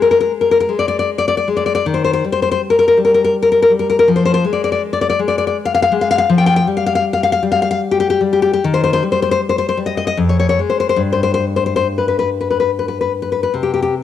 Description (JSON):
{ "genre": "romantic piece for solo classical guitar", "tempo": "70-83 BPM", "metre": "3/4", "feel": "rubato", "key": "unclear", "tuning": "A4 = 440 Hz", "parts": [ { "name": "nylon-string guitar", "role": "solo", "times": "0.0-14.0 s", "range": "F2 to G5", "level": "-13 LUFS", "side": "left 4 dB", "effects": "none" } ], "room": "light reverb, studio ambience", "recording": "home recording on cassette", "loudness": "-13 LUFS", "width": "side -10 dB against mid", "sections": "0.0-13.5 A section", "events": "none", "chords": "0.0 Bb7; 1.9 Eb; 4.1 Fm6; 6.3 Fsus2; 8.6 Eb6; 10.2 Fm; 11.0 N.C." }